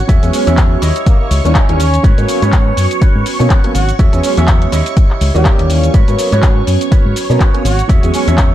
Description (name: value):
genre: filtered disco house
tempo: 123 BPM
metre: 4/4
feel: swing 57% on 16ths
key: G# minor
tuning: A4 = 440 Hz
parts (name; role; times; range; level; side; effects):
- warm horn section; melody; 0.0-8.3 s; A#3 to G4; -22 LUFS; right 3 dB; sidechain pumping
- string machine, full ensemble; sustained chords; 0.0-8.5 s; C#5 to C#6; -23 LUFS; left 1 dB; phaser, ensemble chorus, vintage 12-bit sampler grit, sidechain pumping
- electric guitar with an envelope filter; riff; 0.1-8.5 s; E4 to E5; -23 LUFS; right 4 dB; sidechain pumping
- fingered electric bass; bass; 0.1-8.5 s; G#1 to B2; -14 LUFS; equal; sidechain pumping
- electronic kick drum; drums; 0.1-8.5 s; none; -10 LUFS; equal; studio reverb
- house drum kit; drums; 0.1-8.5 s; cabasa, handclaps, hi-hat; -21 LUFS; left 1 dB; sidechain pumping on perc, studio reverb, sidechain pumping on hats, sidechain pumping on cymbals
- dark concert grand piano; accompaniment; 0.2-8.5 s; E3 to C#4; -17 LUFS; right 2 dB; phaser, sidechain pumping
room: little or no reverb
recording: dark, warm production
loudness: -9 LUFS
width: side -12 dB against mid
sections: 0.0-8.5 A section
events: none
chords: 0.1 E69; 0.8 D#7b9; 2.0 G#m11; 4.0 E69; 4.7 D#7b9; 5.9 G#m11; 7.9 E69